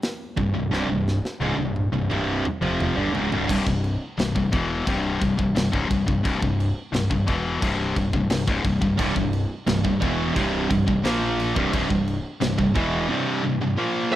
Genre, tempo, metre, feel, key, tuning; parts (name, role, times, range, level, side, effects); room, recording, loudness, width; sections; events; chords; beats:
heavy metal; 87 BPM; 4/4; straight; C phrygian dominant; A4 = 439 Hz
tight metal drum kit; drums; 0.0-12.9 s; crash cymbal, hi-hat, kick drum, snare drum, toms; -28 LUFS; equal
high-gain distorted guitar; riff; 0.4-14.2 s; C2 to Bb3; -23 LUFS; left 2 dB; distortion
high-gain distorted guitar; riff; 0.4-3.5, 9.0-14.2 s; C2 to Bb3; -27 LUFS; right 8 dB; distortion
fuzz fingered electric bass; bass; 0.4-13.1 s; C1 to Bb1; -30 LUFS; equal; overdrive
heavy high-gain guitar; riff; 3.5-14.2 s; C2 to Bb3; -35 LUFS; right 2 dB
light reverb, small room ambience; rough home demo mix; -21 LUFS; side -13 dB against mid
0.0-3.5 A section; 3.5-14.2 B section
drum fill 0.7-3.5
0.0 C5; 3.5 C
0.02 | 0.72 1.41 2.10 2.79 | 3.48 4.17 4.86 5.55 | 6.24 6.93 7.61 8.30 | 8.98 9.67 10.36 11.04 | 11.73 12.41 13.10 13.78